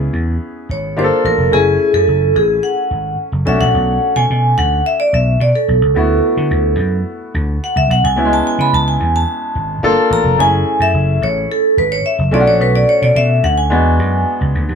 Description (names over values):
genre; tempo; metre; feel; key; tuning
polished 1980s jazz-funk pop; 108 BPM; 4/4; straight; F# minor; A4 = 440 Hz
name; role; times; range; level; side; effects
clear grand piano; accompaniment; 0.0-14.8 s; G#3 to G#5; -19 LUFS; left 2 dB; none
vintage slap bass; bass; 0.0-14.8 s; F1 to D3; -16 LUFS; right 1 dB; none
vibraphone with medium hard mallets; melody; 0.7-14.4 s; G#4 to B5; -15 LUFS; equal; none
room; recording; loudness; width
moderate studio reverb, RT60 0.6 s; band playing live in one room; -12 LUFS; side -6 dB against mid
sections
0.0-14.8 A section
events
vibraphone solo 0.0-14.8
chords
0.0 C#m7; 1.0 Gm9; 1.5 F#m9; 3.5 Bm7; 6.0 D69; 8.2 C#m7; 9.8 Gm9; 10.4 F#m9; 12.3 Bm7; 13.7 E9